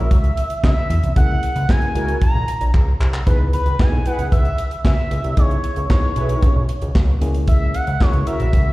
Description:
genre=early-eighties boogie funk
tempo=114 BPM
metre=4/4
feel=straight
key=unclear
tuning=A4 = 440 Hz
part: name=expressive synth lead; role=melody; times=0.0-8.7 s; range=B4 to A#5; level=-25 LUFS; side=equal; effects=chorus, slapback echo, tape echo
part: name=mellow synth brass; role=second line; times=0.0-8.5 s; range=E4 to B4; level=-28 LUFS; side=right 1 dB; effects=chorus, slapback echo
part: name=FM electric piano with auto-pan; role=accompaniment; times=0.0-8.7 s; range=A#3 to G#4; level=-29 LUFS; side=left 1 dB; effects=slapback echo
part: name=fat analog bass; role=bass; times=0.0-8.7 s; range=A#1 to C#3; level=-18 LUFS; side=equal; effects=none
part: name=tight funk drum kit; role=drums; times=0.1-8.7 s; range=handclaps, hi-hat, kick drum, snare drum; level=-17 LUFS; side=equal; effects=none
room=small room reverb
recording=live gig heard through the venue's PA, recital hall reverb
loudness=-15 LUFS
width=side -19 dB against mid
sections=0.0-8.7 A section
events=drum fill 2.7-3.3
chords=0.0 F#7; 3.3 C#m7; 7.2 F#7

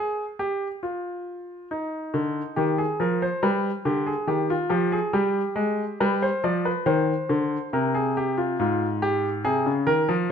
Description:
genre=classical, baroque-style two-part invention for grand piano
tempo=70 BPM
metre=4/4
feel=straight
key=F minor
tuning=A4 = 445 Hz
part: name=clear baby grand piano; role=solo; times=0.0-10.3 s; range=Ab2 to D5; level=-22 LUFS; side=equal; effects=none
room=moderate recital hall reverb, RT60 1.3 s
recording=close, detailed microphones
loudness=-22 LUFS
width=side -7 dB against mid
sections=0.0-10.3 A section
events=none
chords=0.0 N.C.; 1.7 Cm (rootless); 3.4 G; 5.1 G7; 6.9 Cm; 8.6 Fm/Ab

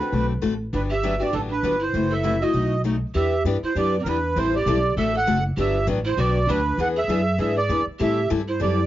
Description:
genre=acoustic string swing (jazz manouche)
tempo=198 BPM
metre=4/4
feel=swing 58% on 8ths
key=G major, E minor from 3.2 s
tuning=A4 = 439 Hz
part: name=accordion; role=melody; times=0.0-8.9 s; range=A4 to F#5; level=-25 LUFS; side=right 3 dB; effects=light tremolo tuning, plate reverb
part: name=breathy pan flute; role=second line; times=0.0-8.9 s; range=C4 to B4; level=-27 LUFS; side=right 3 dB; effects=none
part: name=picked steel-string acoustic guitar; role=accompaniment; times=0.0-8.8 s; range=B2 to A4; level=-25 LUFS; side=left 4 dB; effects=none
part: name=upright bass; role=bass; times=0.1-8.9 s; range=F#1 to A2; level=-25 LUFS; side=equal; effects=none
room=light reverb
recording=worn, warbling old tape, cassette tape, warbly pitch drift, nothing above 7.5 kHz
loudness=-20 LUFS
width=side -13 dB against mid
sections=0.0-3.2 A section; 3.2-8.9 B section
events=none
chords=0.0 D7; 0.7 Gmaj7; 1.9 F#m7b5; 2.5 B7; 3.2 Em7; 4.4 Am7; 5.0 D7; 5.6 Gmaj7; 6.8 E7; 8.0 Am7

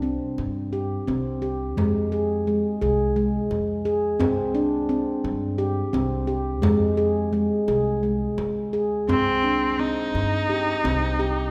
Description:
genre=contemporary instrumental, chamber music in an uneven meter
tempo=172 BPM (eighths)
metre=7/8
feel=straight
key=C minor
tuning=A4 = 440 Hz
part: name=handpan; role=arpeggios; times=0.0-11.4 s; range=Ab3 to Ab4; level=-25 LUFS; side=equal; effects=none
part: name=upright bass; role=bass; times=0.0-11.5 s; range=C2 to G2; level=-32 LUFS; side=equal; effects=none
part: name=frame drum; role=percussion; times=0.4-11.2 s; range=none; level=-32 LUFS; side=equal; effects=none
part: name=clear viola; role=second line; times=9.1-11.5 s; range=C4 to Eb4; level=-26 LUFS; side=equal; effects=none
room=moderate scoring stage reverb, RT60 1.9 s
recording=recorded in a church or concert hall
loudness=-24 LUFS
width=mono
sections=0.0-11.5 A section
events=none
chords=0.0 C5; 1.8 Fm; 4.2 C5; 6.6 Fm; 9.1 Cm

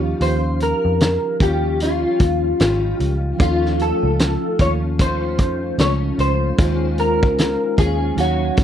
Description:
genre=indie pop, bedroom pop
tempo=75 BPM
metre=4/4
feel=swing 60% on 16ths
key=unclear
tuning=A4 = 439 Hz
part: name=mellow tine electric piano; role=accompaniment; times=0.0-8.6 s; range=F3 to F5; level=-28 LUFS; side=right 5 dB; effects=medium stereo tremolo
part: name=picked plugged-in steel-string acoustic guitar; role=accompaniment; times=0.0-8.6 s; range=Eb3 to F4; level=-25 LUFS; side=left 2 dB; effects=ensemble chorus, vibrato effect
part: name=vintage muted picked electric bass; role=bass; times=0.0-8.6 s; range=Ab1 to F2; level=-21 LUFS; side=equal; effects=none
part: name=electric guitar at the edge of break-up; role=melody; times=0.2-8.6 s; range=F4 to Db5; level=-21 LUFS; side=left 1 dB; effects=ensemble chorus, slapback echo
part: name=loose indie drum kit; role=drums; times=0.2-8.6 s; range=hi-hat, kick drum, snare drum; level=-18 LUFS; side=equal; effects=none
room=little or no reverb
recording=dry, close 1970s-style studio recording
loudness=-16 LUFS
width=side -10 dB against mid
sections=0.0-8.6 A section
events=none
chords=0.0 Eb9; 3.4 F7b13; 6.6 Bbm11

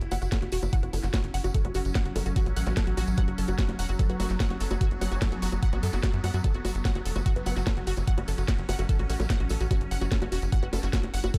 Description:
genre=psychedelic trance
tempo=147 BPM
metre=4/4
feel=straight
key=F# minor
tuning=A4 = 440 Hz
part: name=swarming drone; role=sustained chords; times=0.0-11.4 s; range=F#3 to E4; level=-39 LUFS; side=equal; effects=built-in reverb, sidechain pumping
part: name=tight sequencer bass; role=bass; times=0.0-11.3 s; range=E1 to F#2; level=-32 LUFS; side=equal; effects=none
part: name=drum and bass drum kit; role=drums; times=0.0-11.4 s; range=bongos, hi-hat, snare drum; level=-37 LUFS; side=equal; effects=overdrive, studio reverb
part: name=unison pluck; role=riff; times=0.1-11.4 s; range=F#4 to F#5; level=-38 LUFS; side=equal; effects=sidechain pumping, dub echo
part: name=tambourine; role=percussion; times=0.1-11.4 s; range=none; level=-47 LUFS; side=equal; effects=none
part: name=electronic kick drum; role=drums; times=0.3-11.4 s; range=none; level=-28 LUFS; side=equal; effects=studio reverb
part: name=vowel-sweep wobble bass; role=second line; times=0.8-10.8 s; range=A3 to C#4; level=-45 LUFS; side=equal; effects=subtle chorus, sidechain pumping, high-pass filter, delay
room=digital ambience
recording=dark, warm production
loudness=-27 LUFS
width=mono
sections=0.0-11.4 A section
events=filter sweep on synth arpeggio sound 0.0-11.4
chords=0.0 F#5

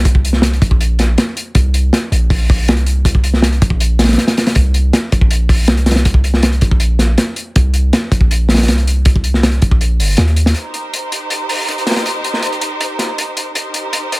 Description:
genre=drum and bass, jungle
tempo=160 BPM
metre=4/4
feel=straight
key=C minor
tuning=A4 = 438 Hz
part: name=long sustained 808-style bass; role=bass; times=0.0-10.5 s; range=G1 to Eb2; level=-13 LUFS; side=equal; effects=none
part: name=crunchy breakbeat drum kit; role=drums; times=0.0-14.2 s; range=hi-hat, kick drum, snare drum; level=-14 LUFS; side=equal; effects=high-pass filter on kick, high-pass filter on hats, high-pass filter on snare, high-pass filter on room
part: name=clear studio string section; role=sustained chords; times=10.6-14.2 s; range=Eb4 to C5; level=-20 LUFS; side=right 1 dB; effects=none
room=little or no reverb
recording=none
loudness=-11 LUFS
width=side -22 dB against mid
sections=0.0-10.6 A section; 10.6-14.2 B section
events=drop 0.0-10.6; kick drops out 9.8-10.6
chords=0.0 C7(no3); 10.6 Cm7

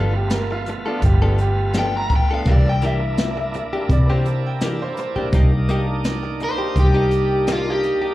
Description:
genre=straight-eighth soul blues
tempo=84 BPM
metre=4/4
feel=straight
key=unclear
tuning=A4 = 440 Hz
part: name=bright upright piano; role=second line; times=0.0-5.3 s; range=F4 to G5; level=-28 LUFS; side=right 2 dB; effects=slapback echo
part: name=bright tonewheel organ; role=accompaniment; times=0.0-8.1 s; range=A3 to F4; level=-28 LUFS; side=right 4 dB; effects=slow rotary speaker, overdrive, slapback echo
part: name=direct-recorded clean electric guitar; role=stabs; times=0.0-8.1 s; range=E3 to A4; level=-27 LUFS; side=left 2 dB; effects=slapback echo
part: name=vintage muted fingered electric bass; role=bass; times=0.0-7.9 s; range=G1 to C3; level=-19 LUFS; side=equal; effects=none
part: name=jazz brush drum kit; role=drums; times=0.3-8.0 s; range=hi-hat, kick drum, snare drum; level=-22 LUFS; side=equal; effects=none
part: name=overdriven semi-hollow guitar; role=melody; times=1.8-8.1 s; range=F4 to Bb5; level=-22 LUFS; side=left 1 dB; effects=none
room=small room ambience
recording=live gig heard through the venue's PA, club reverb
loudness=-17 LUFS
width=side -16 dB against mid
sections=0.0-8.1 A section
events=none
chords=0.0 G9; 2.5 C9; 5.3 Cm7

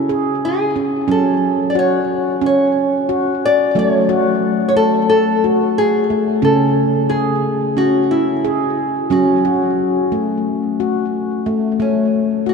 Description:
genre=world meditative, meditative tuned percussion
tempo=90 BPM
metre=4/4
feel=straight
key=F# minor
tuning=A4 = 440 Hz
part: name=nylon-string guitar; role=melody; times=0.0-12.5 s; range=C#4 to D5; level=-18 LUFS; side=left 1 dB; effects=ping-pong delay
part: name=handpan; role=arpeggios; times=0.0-12.5 s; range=C#3 to G#4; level=-16 LUFS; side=equal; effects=ping-pong delay
room=wet cathedral reverb, RT60 5.3 s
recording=in a vast, echoing space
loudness=-14 LUFS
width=side -5 dB against mid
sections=0.0-11.8 A section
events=none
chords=0.0 C#m; 1.1 F#m; 6.4 C#m; 9.1 F#m; 11.8 F#m (rootless)

